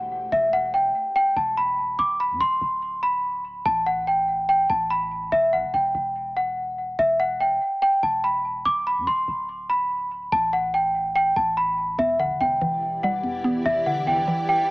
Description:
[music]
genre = hip hop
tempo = 144 BPM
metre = 4/4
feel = half-time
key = E minor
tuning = A4 = 441 Hz
[part]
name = celesta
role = melody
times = 0.0-14.7 s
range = E5 to D6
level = -21 LUFS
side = equal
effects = low-pass filter, tape echo
[part]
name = warm 808-style bass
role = bass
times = 0.0-14.3 s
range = D1 to F#2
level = -39 LUFS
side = equal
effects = none
[part]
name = mallet-like synth pluck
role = accompaniment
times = 12.0-14.7 s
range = E2 to B3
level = -28 LUFS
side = right 1 dB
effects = chorus, phaser, low-pass filter
[part]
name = granular cloud pad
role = sustained chords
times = 12.8-14.7 s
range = E3 to D5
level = -34 LUFS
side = equal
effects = built-in reverb
[sound]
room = light reverb, digital ambience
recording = small speaker sound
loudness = -20 LUFS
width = side -22 dB against mid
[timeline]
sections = 0.0-14.7 A section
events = none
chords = 0.0 Em; 2.0 D7(no3); 3.7 Gadd9/A; 5.3 Em; 8.7 D7(no3); 10.3 Gadd9/A; 12.0 Em7

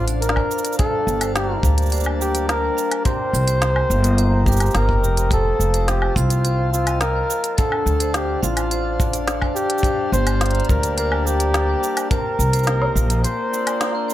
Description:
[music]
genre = folktronica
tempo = 106 BPM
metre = 4/4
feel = straight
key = C dorian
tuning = A4 = 438 Hz
[part]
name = warm flugelhorn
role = melody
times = 0.0-14.1 s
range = F4 to C5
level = -23 LUFS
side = equal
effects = ping-pong delay, plate reverb
[part]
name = vibraphone with hard mallets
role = second line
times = 0.0-14.1 s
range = G4 to C6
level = -30 LUFS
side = right 5 dB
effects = digital delay, plate reverb
[part]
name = pedal harmonium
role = sustained chords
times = 0.0-14.1 s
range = Bb2 to A5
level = -30 LUFS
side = left 2 dB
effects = stereo widening, plate reverb
[part]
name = hammered dulcimer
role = arpeggios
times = 0.0-14.1 s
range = G2 to Bb4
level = -28 LUFS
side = left 2 dB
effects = plate reverb
[part]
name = upright bass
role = bass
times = 0.0-13.2 s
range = F1 to D2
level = -20 LUFS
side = equal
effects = none
[part]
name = organic electronic drum kit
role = drums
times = 0.1-14.1 s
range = cabasa, hi-hat, snare drum, woodblock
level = -25 LUFS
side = equal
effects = none
[part]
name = kick drum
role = drums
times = 0.4-12.2 s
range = none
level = -22 LUFS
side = equal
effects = none
[sound]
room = light reverb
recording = none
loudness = -17 LUFS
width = side -13 dB against mid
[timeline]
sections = 0.0-14.1 A section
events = break 13.2-14.1; band accent 13.8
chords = 0.0 Dm; 0.8 Gmadd9; 3.1 Cm7; 5.3 F; 7.6 Dm; 9.8 Gmadd9; 12.1 Cm7; 13.2 Bbadd9

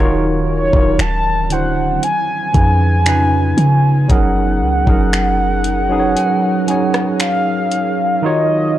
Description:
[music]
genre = contemporary R&B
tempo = 58 BPM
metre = 4/4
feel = straight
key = F# major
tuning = A4 = 441 Hz
[part]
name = tine electric piano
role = accompaniment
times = 0.0-8.8 s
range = C#3 to G#5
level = -18 LUFS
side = right 2 dB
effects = medium stereo tremolo
[part]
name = ethereal airy pad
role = sustained chords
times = 0.0-8.8 s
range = C#3 to E#5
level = -25 LUFS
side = equal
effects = ensemble chorus, built-in reverb
[part]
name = clean 808-style bass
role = bass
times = 0.0-6.2 s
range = D1 to C#3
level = -16 LUFS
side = equal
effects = none
[part]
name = soft synth bell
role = texture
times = 0.0-8.7 s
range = A#4 to G#5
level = -30 LUFS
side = left 2 dB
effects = chorus, tape echo
[part]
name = mellow horn-like synth lead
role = melody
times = 0.5-8.8 s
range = C#5 to A5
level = -18 LUFS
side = equal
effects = chorus
[part]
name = smooth R&B drum kit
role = drums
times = 0.7-8.0 s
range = finger snaps, hi-hat, kick drum, rim click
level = -16 LUFS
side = equal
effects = none
[sound]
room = digital ambience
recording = dry, gritty hardware recording, cassette tape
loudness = -12 LUFS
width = side -13 dB against mid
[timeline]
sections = 0.0-8.2 A section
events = kick muted 6.2-8.2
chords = 0.0 D#m9; 1.0 D9; 2.0 C#7/E#; 3.1 C#9; 4.1 F#69; 8.2 D#m9

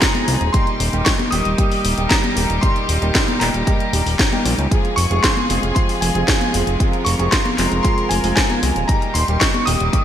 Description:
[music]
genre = italo disco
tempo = 115 BPM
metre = 4/4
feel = straight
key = F minor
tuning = A4 = 440 Hz
[part]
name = clear electric grand piano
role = melody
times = 0.0-10.0 s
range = Ab5 to Eb6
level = -24 LUFS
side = equal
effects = analog chorus, ping-pong delay
[part]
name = rich chamber string section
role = sustained chords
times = 0.0-10.0 s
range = Bb2 to Bb4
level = -24 LUFS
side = left 1 dB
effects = none
[part]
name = dark baby grand piano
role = stabs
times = 0.0-10.0 s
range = G3 to Ab4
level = -25 LUFS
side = right 3 dB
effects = lush chorus
[part]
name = electronic kick drum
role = drums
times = 0.0-10.0 s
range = none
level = -19 LUFS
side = equal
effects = none
[part]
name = house drum kit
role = drums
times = 0.0-10.0 s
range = congas, handclaps, hi-hat, snare drum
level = -20 LUFS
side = left 1 dB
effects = gated reverb
[part]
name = fat analog bass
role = bass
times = 0.3-9.9 s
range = Eb1 to Db2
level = -20 LUFS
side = equal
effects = none
[sound]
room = moderate lush hall reverb, RT60 2.7 s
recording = bright 1980s-style digital production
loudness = -15 LUFS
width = side -10 dB against mid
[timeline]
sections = 0.0-10.0 A section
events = none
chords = 0.0 Fm; 0.5 Eb; 4.7 Fm; 8.9 Eb

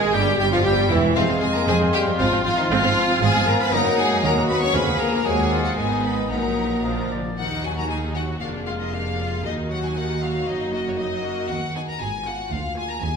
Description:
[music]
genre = quick classical-period movement for symphony orchestra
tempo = 116 BPM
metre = 2/4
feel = straight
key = F minor, Eb minor from 3.2 s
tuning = A4 = 441 Hz
[part]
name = clear oboe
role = second line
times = 0.0-7.4 s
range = E4 to F5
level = -30 LUFS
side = equal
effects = none
[part]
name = dark clarinet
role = second line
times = 0.0-7.0 s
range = Bb3 to Ab4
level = -30 LUFS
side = left 2 dB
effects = none
[part]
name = hollow concert flute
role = second line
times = 0.0-7.1 s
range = E4 to C6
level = -30 LUFS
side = left 1 dB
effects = none
[part]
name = rich chamber violin section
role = second line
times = 0.0-13.1 s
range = Db4 to Db5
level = -27 LUFS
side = left 3 dB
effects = none
[part]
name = mellow bassoon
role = accompaniment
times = 0.0-7.1 s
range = Eb3 to Ab3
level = -28 LUFS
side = right 1 dB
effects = none
[part]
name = rich chamber viola section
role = accompaniment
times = 0.0-13.0 s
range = Eb3 to Ab4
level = -27 LUFS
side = right 2 dB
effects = none
[part]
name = rich chamber violin section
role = melody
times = 0.1-13.2 s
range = Db5 to Db6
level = -28 LUFS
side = left 3 dB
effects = none
[part]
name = dark French horn section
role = sustained chords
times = 0.1-13.2 s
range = Eb3 to Ab4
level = -29 LUFS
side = left 3 dB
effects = none
[part]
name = rich studio double bass section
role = bass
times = 0.1-13.2 s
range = E1 to Eb2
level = -28 LUFS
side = right 3 dB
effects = none
[part]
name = rich symphonic cello section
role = bass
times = 0.1-13.2 s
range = D2 to Bb2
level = -29 LUFS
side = right 3 dB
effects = none
[part]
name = timpani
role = percussion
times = 4.2-4.7, 6.8-7.3 s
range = Bb2 to Eb3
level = -34 LUFS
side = left 1 dB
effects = none
[sound]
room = wet recital hall reverb, RT60 1.4 s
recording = recorded in a church or concert hall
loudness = -19 LUFS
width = side -6 dB against mid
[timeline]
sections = 0.0-7.4 A section; 7.4-13.2 B section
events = timpani fill 6.8-7.4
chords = 0.1 Em; 1.2 Fm; 2.2 Fm/Ab; 3.2 Fdim/Ab; 3.7 Ebm/Gb; 4.2 Ebm; 4.7 Bb7/D; 5.2 Ebm; 5.8 Abm; 6.3 Ebm/Bb; 6.8 Bb; 7.4 Ebm; 8.4 Bb7/F; 9.4 Ebm; 10.5 Ebm/Gb; 11.5 B/D#; 12.0 Fdim/Ab; 12.5 Bb/D

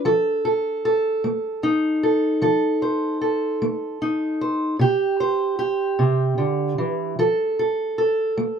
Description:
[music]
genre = blues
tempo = 50 BPM (dotted quarters)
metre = 12/8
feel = straight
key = unclear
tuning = A4 = 440 Hz
[part]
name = fingerpicked steel-string acoustic guitar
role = solo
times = 0.1-8.6 s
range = C3 to C5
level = -19 LUFS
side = right 1 dB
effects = none
[sound]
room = moderate booth ambience, RT60 0.2 s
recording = minimal, uncompressed stereo recording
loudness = -19 LUFS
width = side -7 dB against mid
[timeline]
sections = 0.0-8.6 A section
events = none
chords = 0.0 F7; 4.8 C; 7.2 F

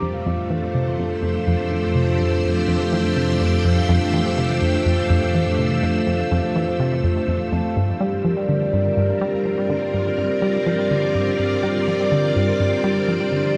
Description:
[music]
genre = ambient, sequencer-driven space music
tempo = 124 BPM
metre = 4/4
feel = straight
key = unclear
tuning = A4 = 440 Hz
[part]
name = string machine, full ensemble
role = sustained chords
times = 0.0-13.6 s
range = F2 to E6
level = -25 LUFS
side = equal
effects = ensemble chorus
[part]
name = vibraphone with soft mallets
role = arpeggios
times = 0.0-13.6 s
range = D4 to A5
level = -25 LUFS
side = equal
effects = low-pass filter, tape echo
[part]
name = tight sequenced synth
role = riff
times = 0.0-13.6 s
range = F2 to G3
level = -25 LUFS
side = equal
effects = chorus, tape echo
[sound]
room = wet huge ambient reverb, RT60 7.9 s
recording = none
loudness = -20 LUFS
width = mono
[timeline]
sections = 0.0-13.6 A section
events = filter sweep on vibraphone 0.0-13.6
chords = 0.0 F; 7.8 Gm

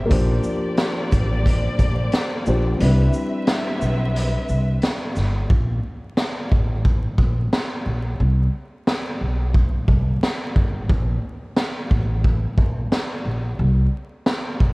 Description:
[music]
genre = hip hop, boom-bap hip-hop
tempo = 89 BPM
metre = 4/4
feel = swing 54% on 16ths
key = C major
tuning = A4 = 439 Hz
[part]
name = dark grand piano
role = accompaniment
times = 0.0-5.5 s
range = Bb2 to C5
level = -26 LUFS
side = left 1 dB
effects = cassette tape, high-pass filter, low-pass filter
[part]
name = warm symphonic string section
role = sustained chords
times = 0.0-5.5 s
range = Bb3 to E5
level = -29 LUFS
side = equal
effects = high-pass filter, low-pass filter
[part]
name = upright bass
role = bass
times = 0.0-14.7 s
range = G1 to C2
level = -20 LUFS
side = equal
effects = none
[part]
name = raw garage drum kit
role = drums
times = 0.1-14.7 s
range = hi-hat, kick drum, shaker, snare drum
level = -21 LUFS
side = equal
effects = none
[sound]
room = little or no reverb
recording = worn, warbling old tape, cassette tape, vinyl crackle, warbly pitch drift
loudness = -18 LUFS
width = side -25 dB against mid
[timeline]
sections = 0.0-5.5 A section; 5.5-14.7 B section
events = kick muted 2.8-5.5; hi-hats muted 5.5-14.7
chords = 0.1 Bb69; 2.8 Cmaj7; 5.5 N.C.; 8.2 C5; 10.9 N.C.; 13.6 C5

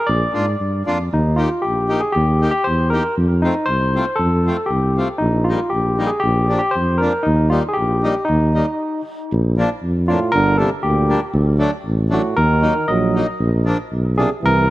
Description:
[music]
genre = alpine folk, alpine dance band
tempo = 117 BPM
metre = 2/4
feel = straight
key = Eb major, Bb major from 9.3 s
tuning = A4 = 439 Hz
[part]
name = barky tine electric piano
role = melody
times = 0.0-14.7 s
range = Eb4 to Eb5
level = -20 LUFS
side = equal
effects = analog delay
[part]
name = dark tuba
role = bass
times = 0.1-14.7 s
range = G1 to Ab2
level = -18 LUFS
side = equal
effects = none
[part]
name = accordion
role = accompaniment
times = 0.3-14.3 s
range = F3 to G4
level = -24 LUFS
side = left 1 dB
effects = none
[part]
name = warm euphonium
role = second line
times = 10.1-14.7 s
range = A2 to Gb3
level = -24 LUFS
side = right 4 dB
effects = none
[sound]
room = light reverb, studio ambience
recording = echo-heavy mix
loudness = -15 LUFS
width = side -16 dB against mid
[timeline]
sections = 0.0-9.3 A section; 9.3-14.7 B section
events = stop 8.8-9.3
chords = 0.0 Bb; 1.1 Eb; 3.2 F; 5.2 Eb/Bb; 6.2 Bb; 7.3 Eb; 9.3 Bb; 10.3 Gm; 11.3 D; 12.4 Ebm; 13.4 Bb

